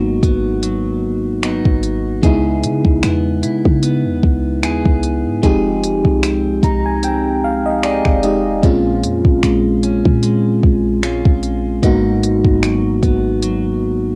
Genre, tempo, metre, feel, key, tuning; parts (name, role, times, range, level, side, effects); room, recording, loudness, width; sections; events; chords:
contemporary R&B; 75 BPM; 4/4; swing 54% on 16ths; Bb minor; A4 = 440 Hz
FM electric piano; accompaniment; 0.0-14.2 s; Ab3 to Bb5; -19 LUFS; equal; chorus, cassette tape
clean electric guitar; arpeggios; 0.0-14.2 s; Ab2 to Ab4; -24 LUFS; equal; spring reverb, cassette tape, tape echo
clean 808-style bass; bass; 0.0-14.2 s; F1 to Db3; -23 LUFS; equal
smooth R&B drum kit; drums; 0.2-13.6 s; finger snaps, hi-hat, kick drum; -18 LUFS; equal; cassette tape
light reverb; home recording on cassette; -16 LUFS; mono
0.0-14.2 A section
FM electric piano fill 6.2-8.6
0.0 Abm7; 2.2 Dbm7; 5.4 Fm7; 8.6 Bbm7; 11.8 Abm7